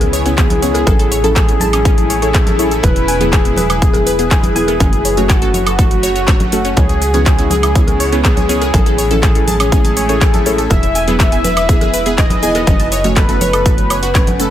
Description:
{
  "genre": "progressive house",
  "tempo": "122 BPM",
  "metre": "4/4",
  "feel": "straight",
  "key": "unclear",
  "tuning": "A4 = 440 Hz",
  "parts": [
    { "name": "wide unison lead", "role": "melody", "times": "0.0-14.5 s", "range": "F#4 to E5", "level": "-18 LUFS", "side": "left 1 dB", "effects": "sidechain pumping, tape echo" },
    { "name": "shimmering ambient pad", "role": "sustained chords", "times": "0.0-14.5 s", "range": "C#3 to B4", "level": "-23 LUFS", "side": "left 2 dB", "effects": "chorus, built-in reverb, sidechain pumping" },
    { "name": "deep mellow chord stab", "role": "stabs", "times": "0.0-14.5 s", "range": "A3 to C#5", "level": "-21 LUFS", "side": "equal", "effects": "chorus, sidechain pumping, digital delay" },
    { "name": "tight sequencer bass", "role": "bass", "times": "0.0-14.5 s", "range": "E1 to C#2", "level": "-19 LUFS", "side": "equal", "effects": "sidechain pumping" },
    { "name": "deep house drum kit", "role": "drums", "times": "0.0-14.5 s", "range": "handclaps, hi-hat, shaker, woodblock", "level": "-20 LUFS", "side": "equal", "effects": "overdrive" },
    { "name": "congas and cowbell", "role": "percussion", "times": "0.0-14.4 s", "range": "none", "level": "-24 LUFS", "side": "right 1 dB", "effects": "sidechain pumping on perc" },
    { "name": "impact", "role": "sound effects", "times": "0.1-0.9 s", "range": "none", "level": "barely audible", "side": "none", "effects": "none" },
    { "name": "wide unison pluck", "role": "arpeggios", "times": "0.1-14.5 s", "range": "B3 to A5", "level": "-23 LUFS", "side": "equal", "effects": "sidechain pumping, digital delay" },
    { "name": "electronic kick drum", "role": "drums", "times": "0.4-14.2 s", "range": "none", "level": "-13 LUFS", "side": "equal", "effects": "none" }
  ],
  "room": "little or no reverb",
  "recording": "none",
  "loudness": "-10 LUFS",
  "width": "side -11 dB against mid",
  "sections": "0.0-14.5 A section",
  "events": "impact 0.0-0.9",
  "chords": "0.0 C#m7; 0.9 A; 2.8 E; 4.8 F#m; 6.8 C#m7; 8.7 A; 10.7 E; 12.7 F#m",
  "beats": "0.38 | 0.87 1.36 1.85 2.35 | 2.84 3.33 3.82 4.31 | 4.80 5.30 5.79 6.28 | 6.77 7.26 7.75 8.25 | 8.74 9.23 9.72 10.21 | 10.71 11.20 11.69 12.18 | 12.67 13.16 13.66 14.15"
}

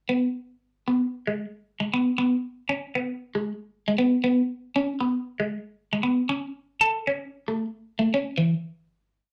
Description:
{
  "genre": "highlife",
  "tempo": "116 BPM",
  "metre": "4/4",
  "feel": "swing 53% on 16ths",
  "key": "unclear",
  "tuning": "A4 = 443 Hz",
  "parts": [
    { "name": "electric guitar at the edge of break-up", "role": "solo", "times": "0.1-8.5 s", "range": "E3 to A4", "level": "-25 LUFS", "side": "equal", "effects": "phaser" }
  ],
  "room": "wet studio reverb, RT60 0.5 s",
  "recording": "none",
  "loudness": "-26 LUFS",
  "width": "mono",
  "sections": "0.1-8.4 groove; 8.4-9.3 final note",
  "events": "none",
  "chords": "none",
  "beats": "| 0.10 0.62 1.14 1.66 | 2.17 2.69 3.21 3.72 | 4.24 4.75 5.27 5.79 | 6.30 6.82 7.34 7.86 | 8.37"
}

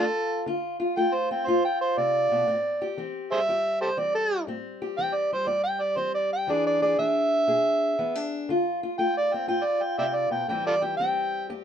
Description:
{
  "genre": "acoustic country blues, solo or duo",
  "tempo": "120 BPM",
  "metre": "4/4",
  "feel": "swing 67% on 8ths",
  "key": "A minor",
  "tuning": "A4 = 440 Hz",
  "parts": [
    { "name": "overdriven harmonica", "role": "melody", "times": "0.0-11.5 s", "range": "F4 to G5", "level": "-24 LUFS", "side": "right 1 dB", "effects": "none" },
    { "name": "fingerpicked steel-string acoustic guitar", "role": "accompaniment", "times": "0.0-11.6 s", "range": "E2 to G#4", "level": "-29 LUFS", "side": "left 2 dB", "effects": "none" }
  ],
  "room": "moderate studio reverb, RT60 0.6 s",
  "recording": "minimal, uncompressed stereo recording",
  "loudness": "-23 LUFS",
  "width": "side -8 dB against mid",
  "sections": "0.0-11.6 A section",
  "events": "harmonica solo 0.0-11.6",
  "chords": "0.0 Dm7; 2.5 Am7; 6.5 E7; 8.5 Dm7; 10.5 Am7",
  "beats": "| 0.46 0.96 1.46 1.96 | 2.46 2.96 3.46 3.97 | 4.47 4.97 5.47 5.97 | 6.48 6.98 7.48 7.98 | 8.48 8.98 9.48 9.99 | 10.49 10.99 11.49"
}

